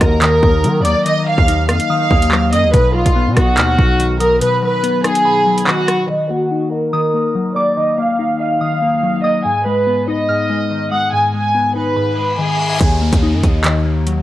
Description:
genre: hip hop, drill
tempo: 143 BPM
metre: 4/4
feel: half-time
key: Eb minor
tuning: A4 = 440 Hz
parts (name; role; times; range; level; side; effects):
- warm studio violin section; melody; 0.0-12.8 s; F4 to Ab5; -16 LUFS; right 1 dB; low-pass filter, cassette tape
- glassy digital keys; accompaniment; 0.0-14.2 s; Ab2 to Eb5; -19 LUFS; left 4 dB; chorus, low-pass filter, cassette tape
- distorted 808-style bass; bass; 0.0-4.4, 12.8-14.2 s; B1 to Eb3; -17 LUFS; right 1 dB; distortion
- drill drum kit; drums; 0.0-6.0, 12.8-14.2 s; handclaps, hi-hat, kick drum, rim click; -16 LUFS; right 1 dB; cassette tape
- soft synth bell; second line; 0.2-12.8 s; B5 to F6; -25 LUFS; right 1 dB; chorus, phaser, cassette tape, analog delay
- reverse cymbal and downlifter; sound effects; 12.2-14.2 s; none; -24 LUFS; left 2 dB; none
room: light reverb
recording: home recording on cassette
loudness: -13 LUFS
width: side -14 dB against mid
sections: 0.0-6.1 A section; 6.1-12.8 B section; 12.8-14.2 C section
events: kick muted 4.4-6.1; filter sweep 6.1-12.8; reverse cymbal 12.2-12.8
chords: 0.0 Ebm; 2.7 B; 6.1 Ebm; 9.4 Abm; 12.8 Ebm

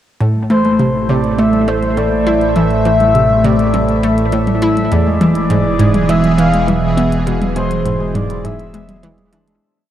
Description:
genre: ambient, sequencer-driven space music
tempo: 102 BPM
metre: 4/4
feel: straight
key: A harmonic minor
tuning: A4 = 440 Hz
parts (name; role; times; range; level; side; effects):
- phased analog pad; sustained chords; 0.6-9.6 s; A2 to E5; -16 LUFS; right 1 dB; phaser, chorus
- Celtic harp; arpeggios; 0.2-9.9 s; E3 to A4; -20 LUFS; left 1 dB; auto-pan, analog delay
- analog pluck; riff; 0.2-9.5 s; E2 to E4; -17 LUFS; right 1 dB; chorus, analog delay
- warm sub bass; bass; 0.2-9.6 s; E1 to A1; -23 LUFS; equal; none
- minimal click drum kit; percussion; 0.2-9.6 s; hi-hat, toms; -24 LUFS; equal; overdrive
- breathy flute-like synth lead; melody; 0.5-9.3 s; C5 to F5; -18 LUFS; left 1 dB; lush chorus, analog delay
room: wet lush hall reverb, RT60 2.9 s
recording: worn, warbling old tape, cassette tape, warbly pitch drift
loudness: -11 LUFS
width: side -11 dB against mid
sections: 0.2-9.6 A section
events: fade-in on sub bass 0.2-9.6; fade-in on drum 0.2-9.6; fade-out 6.5-9.6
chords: 0.2 Am; 4.9 E

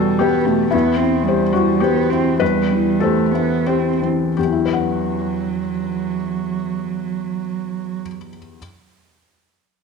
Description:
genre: neoclassical piano and strings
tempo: 83-114 BPM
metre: 3/4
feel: rubato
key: E minor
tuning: A4 = 439 Hz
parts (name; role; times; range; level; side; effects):
- dark cello; second line; 0.0-8.0 s; F#3 to C4; -20 LUFS; right 11 dB; none
- felt-muted upright piano; accompaniment; 0.0-8.6 s; E2 to F#5; -19 LUFS; left 7 dB; none
room: wet echo chamber reverb, RT60 1.6 s, studio reverb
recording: 1960s-style stereo with parts hard left and right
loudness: -17 LUFS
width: side -5 dB against mid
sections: 0.0-4.4 A section; 4.4-8.6 B section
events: slowing down 0.0-4.4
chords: 0.0 Emadd9; 0.7 C/E; 4.4 Emadd9

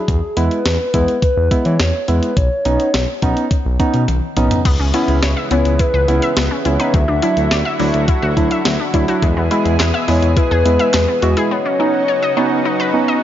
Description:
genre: synth-pop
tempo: 105 BPM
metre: 4/4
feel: straight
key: C# minor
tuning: A4 = 442 Hz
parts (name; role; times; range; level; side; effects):
- hollow clarinet-like synth lead; melody; 0.0-13.2 s; G#4 to E5; -20 LUFS; left 1 dB; chorus, analog delay
- soft electric-piano-like synth keys; accompaniment; 0.0-13.2 s; F#3 to F#4; -19 LUFS; right 1 dB; chorus
- smooth synth bass; bass; 0.1-11.3 s; B1 to E3; -18 LUFS; equal; none
- clean 12-bit digital drum machine; drums; 0.1-11.5 s; crash cymbal, handclaps, hi-hat, kick drum, snare drum, toms; -19 LUFS; equal; none
- lush unison pad; sustained chords; 4.7-13.2 s; B2 to G#4; -22 LUFS; equal; chorus
- wide unison pluck; arpeggios; 4.7-13.2 s; F#3 to E5; -22 LUFS; left 5 dB; auto-pan, analog delay
room: light reverb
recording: nothing above 7.5 kHz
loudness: -13 LUFS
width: side -11 dB against mid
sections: 0.0-4.7 A section; 4.7-13.2 B section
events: drum fill 4.1-4.7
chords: 0.1 E; 2.4 Badd9; 4.7 C#m7; 6.9 Dadd9; 9.2 E; 11.5 Badd9

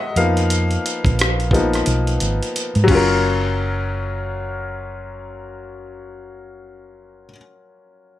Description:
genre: R&B, neo-soul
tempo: 88 BPM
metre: 4/4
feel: swing 60% on 16ths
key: F# major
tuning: A4 = 442 Hz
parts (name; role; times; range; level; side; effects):
- bright upright piano; accompaniment; 0.0-8.2 s; D#3 to G#5; -21 LUFS; left 3 dB; plate reverb
- hollow-body short-scale fingered electric bass; bass; 0.2-7.3 s; F#1 to G#2; -21 LUFS; right 1 dB; none
- dusty soul sampler-style drum kit; drums; 0.2-3.1 s; crash cymbal, hi-hat, kick drum, rim click; -22 LUFS; equal; none
room: light reverb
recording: none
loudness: -16 LUFS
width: side -13 dB against mid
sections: 0.0-3.2 A section; 3.2-5.9 B section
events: upright piano solo 0.0-3.2; drum fill 1.9-3.2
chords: 0.2 G#m69 (rootless); 2.9 F#maj7

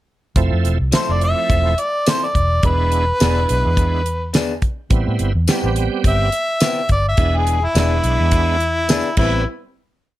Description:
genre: straight-eighth soul blues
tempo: 105 BPM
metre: 4/4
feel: swing 55% on 16ths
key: unclear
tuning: A4 = 439 Hz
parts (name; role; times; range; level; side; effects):
- bright tonewheel organ; accompaniment; 0.4-9.4 s; F3 to G4; -24 LUFS; right 6 dB; slow rotary speaker, overdrive, chorus vibrato
- vintage muted fingered electric bass; bass; 0.4-9.4 s; E1 to A2; -18 LUFS; equal; none
- damped 70s drum kit; drums; 0.4-9.3 s; crash cymbal, hi-hat, kick drum, snare drum, tambourine; -18 LUFS; equal; none
- electric guitar through a small old amp; stabs; 0.9-9.4 s; E3 to B4; -25 LUFS; left 5 dB; none
- clear harmonica; melody; 1.0-9.4 s; E4 to E5; -19 LUFS; left 1 dB; overdrive
room: light reverb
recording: none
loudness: -15 LUFS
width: side -15 dB against mid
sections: 0.4-9.5 head; 9.5-10.2 final hit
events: none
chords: 0.4 Fmaj7; 2.6 E7; 4.9 Am9; 7.2 E7; 9.2 Am9; 9.5 N.C.

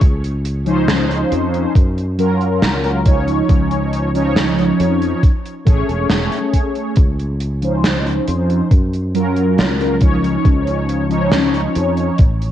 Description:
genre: vaporwave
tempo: 69 BPM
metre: 4/4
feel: straight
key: Db major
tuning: A4 = 441 Hz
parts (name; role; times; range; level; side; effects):
- sustaining fretless electric bass; bass; 0.0-12.5 s; E1 to Gb2; -20 LUFS; equal; none
- electronic kick drum; drums; 0.0-12.4 s; none; -12 LUFS; equal; none
- gated 80s drum kit; drums; 0.0-12.5 s; hi-hat, snare drum; -20 LUFS; right 1 dB; gated reverb
- mellow synth brass; accompaniment; 0.7-12.2 s; F3 to Db5; -18 LUFS; equal; phaser, analog chorus, tape echo
room: light reverb, studio reverb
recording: cassette tape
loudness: -14 LUFS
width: side -11 dB against mid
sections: 0.0-12.5 A section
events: none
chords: 0.0 Dbmaj9; 1.8 Gbmaj7; 3.1 Dbadd9; 5.2 Amaj7; 7.0 Dbmaj9; 8.7 Gbmaj7; 10.0 Dbadd9

